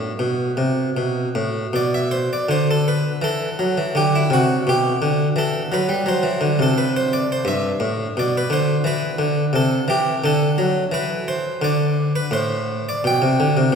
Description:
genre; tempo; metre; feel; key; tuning
classical, baroque-style suite movement for harpsichord; 85 BPM; 4/4; uneven beats, rubato; G major; A4 = 440 Hz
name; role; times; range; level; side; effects
harpsichord; solo; 0.0-13.8 s; G2 to G5; -18 LUFS; equal; none
room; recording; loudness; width
wet church reverb, RT60 3.2 s; recorded in a church or concert hall; -18 LUFS; side -6 dB against mid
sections
0.0-1.7 A section; 1.7-13.8 A section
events
none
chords
0.0 G; 1.7 Bm; 3.2 C/E; 4.7 G/B; 6.1 D7(no3); 7.4 G; 8.8 C; 10.2 D; 11.6 D5; 13.0 G/B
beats
0.18 0.96 | 1.72 2.47 3.21 3.95 | 4.67 5.36 6.06 6.75 | 7.44 8.15 8.84 9.53 | 10.23 10.91 11.61 12.30 | 13.04 13.74

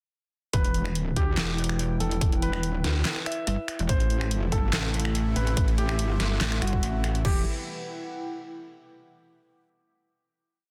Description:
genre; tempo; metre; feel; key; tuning
heavy wobble dubstep; 143 BPM; 4/4; half-time; E minor; A4 = 441 Hz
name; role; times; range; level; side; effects
warm grand piano; melody; 0.5-7.4 s; F#4 to E5; -38 LUFS; equal; dub echo
metallic wobble bass; bass; 0.5-7.4 s; E1 to D2; -29 LUFS; equal; chorus, overdrive
dubstep drum kit; drums; 0.5-7.3 s; crash cymbal, finger snaps, handclaps, hi-hat, snare drum; -34 LUFS; equal; none
electronic kick drum; drums; 0.5-7.3 s; none; -28 LUFS; equal; none
warbly tape-like pad; texture; 1.1-8.9 s; E4 to C6; -40 LUFS; equal; chorus, built-in reverb, sidechain pumping
pulsing pluck wobble bass; bass; 1.4-7.2 s; E1 to A1; -29 LUFS; equal; chorus, overdrive
supersaw pad; sustained chords; 3.9-7.4 s; B2 to E4; -41 LUFS; equal; sidechain pumping
room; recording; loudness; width
little or no reverb; dense, heavily limited modern master; -27 LUFS; mono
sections
0.5-7.2 drop; 7.2-8.9 final chord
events
drop 0.5-7.2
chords
0.5 Em; 3.9 Am; 7.2 Em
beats
| 0.54 0.95 1.37 1.79 | 2.21 2.63 3.05 3.47 | 3.89 4.31 4.73 5.15 | 5.57 5.99 6.41 6.83 | 7.25 7.67 8.09 8.51

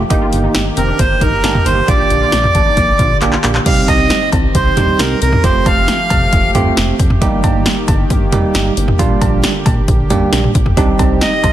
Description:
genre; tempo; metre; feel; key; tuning
synth-pop; 135 BPM; 4/4; straight; C dorian; A4 = 439 Hz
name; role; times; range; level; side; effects
warm analog pad; sustained chords; 0.0-11.5 s; D3 to G4; -22 LUFS; equal; chorus
chorused synth bass; bass; 0.0-11.5 s; F1 to C2; -18 LUFS; equal; none
bell-like tine electric piano; accompaniment; 0.1-11.3 s; G3 to G4; -18 LUFS; right 4 dB; none
wide unison pluck; arpeggios; 0.1-3.5, 10.8-11.5 s; C4 to G4; -24 LUFS; left 3 dB; ensemble chorus, digital delay
punchy analog drum machine; drums; 0.1-11.5 s; cowbell, crash cymbal, handclaps, hi-hat, kick drum, snare drum, toms; -14 LUFS; equal; none
accordion; melody; 0.8-6.5, 11.2-11.5 s; Bb4 to F5; -15 LUFS; right 2 dB; digital delay
room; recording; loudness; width
light reverb; dense, heavily limited modern master, lossy compression artefacts; -10 LUFS; side -12 dB against mid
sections
0.0-3.7 A section; 3.7-11.5 B section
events
drum fill 3.2-3.7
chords
0.1 Eb; 1.9 Bb6; 3.7 Cm; 5.4 Fadd9; 7.2 Eb/G; 9.0 Bb6; 10.8 Cm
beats
| 0.10 0.55 0.99 1.44 | 1.88 2.33 2.77 3.22 | 3.66 4.11 4.55 4.99 | 5.44 5.88 6.33 6.77 | 7.22 7.66 8.11 8.55 | 8.99 9.44 9.88 10.33 | 10.77 11.22

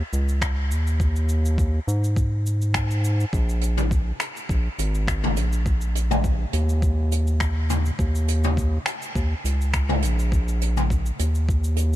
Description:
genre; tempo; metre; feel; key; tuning
sunset chillout; 103 BPM; 4/4; straight; unclear; A4 = 440 Hz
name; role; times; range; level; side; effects
round analog bass; bass; 0.0-12.0 s; Ab1 to Ab2; -21 LUFS; equal; none
jazz brush drum kit; drums; 0.1-12.0 s; cabasa, finger snaps, hi-hat, toms; -29 LUFS; left 1 dB; none
electronic kick drum; drums; 0.4-11.6 s; none; -24 LUFS; equal; none
room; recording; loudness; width
little or no reverb; none; -20 LUFS; side -14 dB against mid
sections
0.0-12.0 A section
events
none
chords
none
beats
0.42 | 1.00 1.58 2.17 2.75 | 3.33 3.91 4.50 5.08 | 5.66 6.24 6.83 7.41 | 7.99 8.57 9.15 9.74 | 10.32 10.90 11.48

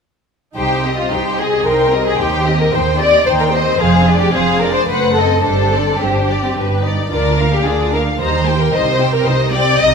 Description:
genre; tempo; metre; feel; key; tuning
quick classical-period movement for string orchestra; 111 BPM; 3/4; straight; C minor; A4 = 440 Hz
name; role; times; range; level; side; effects
warm studio violin section; melody; 0.6-9.9 s; B4 to Bb5; -21 LUFS; left 4 dB; none
warm studio violin section; second line; 0.6-9.9 s; F4 to Eb5; -16 LUFS; left 2 dB; none
warm studio viola section; accompaniment; 0.6-9.9 s; G3 to C5; -22 LUFS; equal; none
rich studio double bass section; bass; 0.6-9.9 s; F1 to Eb2; -21 LUFS; right 3 dB; none
warm studio cello section; bass; 0.6-9.9 s; C2 to Eb3; -20 LUFS; right 3 dB; none
room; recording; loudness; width
wet scoring stage reverb, RT60 1.8 s; minimal, uncompressed stereo recording; -12 LUFS; side -5 dB against mid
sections
0.6-9.9 A section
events
none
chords
0.6 Cm; 2.2 Cm/Eb; 3.8 Dm7b5/F; 4.9 F#dim7; 5.4 Gsus4; 6.6 G; 7.1 Bb/D; 8.2 Eb; 8.7 Cm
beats
| 0.56 1.11 1.65 | 2.19 2.73 3.27 | 3.80 4.34 4.88 | 5.44 6.00 6.56 | 7.12 7.67 8.21 | 8.75 9.28 9.82

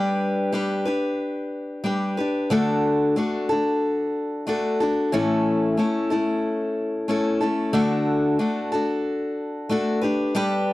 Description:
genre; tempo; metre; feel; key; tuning
rock; 92 BPM; 4/4; straight; D major; A4 = 440 Hz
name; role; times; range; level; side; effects
picked steel-string acoustic guitar; solo; 0.0-10.7 s; A2 to B4; -21 LUFS; left 1 dB; none
room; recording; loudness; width
light reverb; dry, close 1970s-style studio recording; -21 LUFS; side -18 dB against mid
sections
0.0-10.7 A section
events
none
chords
0.0 G; 2.5 D; 5.1 A; 7.7 D; 10.0 G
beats
0.54 1.19 1.85 | 2.51 3.16 3.82 4.47 | 5.13 5.78 6.43 7.09 | 7.74 8.39 9.05 9.70 | 10.36

